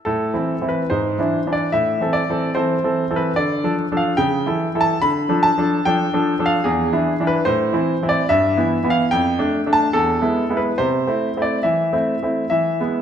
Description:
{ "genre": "classical-period piano sonatina", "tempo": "73 BPM", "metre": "2/4", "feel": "straight", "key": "A minor", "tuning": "A4 = 440 Hz", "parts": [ { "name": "bright baby grand piano", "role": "solo", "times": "0.1-13.0 s", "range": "E2 to B5", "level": "-17 LUFS", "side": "equal", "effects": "none" } ], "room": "wet recital hall reverb, RT60 1.7 s", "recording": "minimal, uncompressed stereo recording", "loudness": "-17 LUFS", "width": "side -8 dB against mid", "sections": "0.0-13.0 A section", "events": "none", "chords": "0.0 Am; 0.9 E7/G#; 1.7 Am; 3.4 Dm; 4.2 A7/C#; 5.0 Dm; 6.7 E7; 7.5 Am; 8.3 Em/G; 9.1 Dm/F; 9.9 E; 10.8 Am/C; 11.6 Am/E; 12.5 E", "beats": "| 0.05 0.89 | 1.72 2.54 | 3.37 4.19 | 5.02 5.84 | 6.65 7.47 | 8.29 9.11 | 9.94 10.79 | 11.64 12.50" }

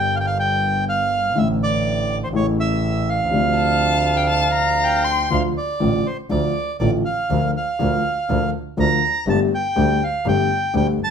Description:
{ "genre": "tango", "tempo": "122 BPM", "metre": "4/4", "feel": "rubato", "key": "D minor", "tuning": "A4 = 440 Hz", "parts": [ { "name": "bandoneon", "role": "melody", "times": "0.0-11.1 s", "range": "C5 to Bb5", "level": "-21 LUFS", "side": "right 2 dB", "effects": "none" }, { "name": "warm upright piano", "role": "accompaniment", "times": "0.0-11.1 s", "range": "F#1 to G4", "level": "-22 LUFS", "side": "left 3 dB", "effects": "none" }, { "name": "rich double bass", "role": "bass", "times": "0.0-11.1 s", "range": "G1 to D2", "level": "-24 LUFS", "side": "right 2 dB", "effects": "none" }, { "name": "warm violin", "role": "second line", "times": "3.6-5.3 s", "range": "G5 to C6", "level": "-22 LUFS", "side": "left 5 dB", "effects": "none" } ], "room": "moderate studio reverb, RT60 0.8 s", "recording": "minimal, uncompressed stereo recording", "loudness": "-17 LUFS", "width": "side -7 dB against mid", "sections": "0.0-5.3 A section; 5.3-11.1 A section", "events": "none", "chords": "0.0 Gm; 1.4 Asus4; 2.3 A; 3.3 Dm7; 5.3 Dm; 7.3 Bb/D; 9.3 Gsus2", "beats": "0.38 0.87 | 1.36 1.84 2.33 2.83 | 3.32 3.81 4.31 4.81 | 5.31 5.80 6.30 6.80 | 7.29 7.79 8.28 8.78 | 9.27 9.76 10.25 10.74" }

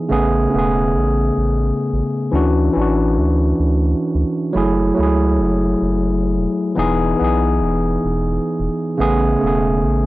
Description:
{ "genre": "sunset chillout", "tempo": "108 BPM", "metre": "4/4", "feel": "swing 56% on 16ths", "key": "unclear", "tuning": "A4 = 440 Hz", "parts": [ { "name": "overdriven tine electric piano", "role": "accompaniment", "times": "0.0-10.1 s", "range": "C#3 to G#4", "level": "-17 LUFS", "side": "equal", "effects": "auto-pan, low-pass filter, analog delay" }, { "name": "round analog bass", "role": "bass", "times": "0.1-10.1 s", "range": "E1 to D2", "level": "-19 LUFS", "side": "equal", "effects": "none" } ], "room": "light reverb", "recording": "dry, gritty hardware recording, transformer saturation, cassette tape", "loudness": "-15 LUFS", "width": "side -18 dB against mid", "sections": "0.0-10.1 A section", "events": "none", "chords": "0.1 Amaj9; 2.3 Dmaj9; 4.6 F#m9; 6.8 Emaj7; 9.0 Amaj9", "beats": "| 0.12 0.67 1.23 1.78 | 2.34 2.89 3.45 4.00 | 4.56 5.12 5.67 6.23 | 6.78 7.34 7.89 8.45 | 9.00 9.56" }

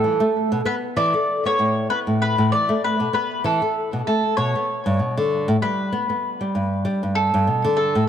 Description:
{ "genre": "folktronica", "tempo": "97 BPM", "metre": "4/4", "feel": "swing 56% on 16ths", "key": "A mixolydian", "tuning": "A4 = 437 Hz", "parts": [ { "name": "mandolin", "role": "melody", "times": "0.0-8.1 s", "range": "A4 to D5", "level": "-22 LUFS", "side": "right 1 dB", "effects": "ping-pong delay" }, { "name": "nylon-string guitar", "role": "arpeggios", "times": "0.0-8.0 s", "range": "G2 to A4", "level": "-21 LUFS", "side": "left 1 dB", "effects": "ping-pong delay" } ], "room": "moderate plate reverb, RT60 3.0 s", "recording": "none", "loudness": "-19 LUFS", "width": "side -9 dB against mid", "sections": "0.0-8.1 A section", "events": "none", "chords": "0.0 Asus2; 4.7 Gadd9", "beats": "0.36 0.97 1.59 | 2.21 2.83 3.45 4.07 | 4.69 5.30 5.92 6.54 | 7.16 7.78" }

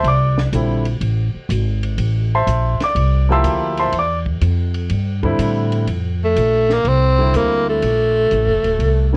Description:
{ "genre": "modal jazz", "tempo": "123 BPM", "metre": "4/4", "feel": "swing 68% on 8ths", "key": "Bb lydian", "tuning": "A4 = 441 Hz", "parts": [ { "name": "warm concert grand piano", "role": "accompaniment", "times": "0.0-9.2 s", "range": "D3 to E6", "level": "-21 LUFS", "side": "equal", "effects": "none" }, { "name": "upright bass", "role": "bass", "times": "0.0-9.2 s", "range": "D1 to A2", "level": "-20 LUFS", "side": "equal", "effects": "none" }, { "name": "compact cocktail drum kit", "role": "drums", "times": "0.0-9.2 s", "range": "hi-hat, kick drum, ride cymbal, snare drum", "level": "-33 LUFS", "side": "equal", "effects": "none" }, { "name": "growling tenor saxophone", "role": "melody", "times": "6.2-9.1 s", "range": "A3 to C4", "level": "-18 LUFS", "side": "equal", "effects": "tape echo" } ], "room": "little or no reverb", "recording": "worn, warbling old tape, cassette tape, warbly pitch drift", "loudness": "-17 LUFS", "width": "mono", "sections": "0.0-5.9 A section; 5.9-9.2 B section", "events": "none", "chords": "0.0 Am; 5.9 Bbmaj9#11", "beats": "| 0.04 0.53 1.02 1.50 | 1.99 2.48 2.96 3.45 | 3.94 4.42 4.91 5.39 | 5.88 6.37 6.85 7.34 | 7.83 8.31 8.80" }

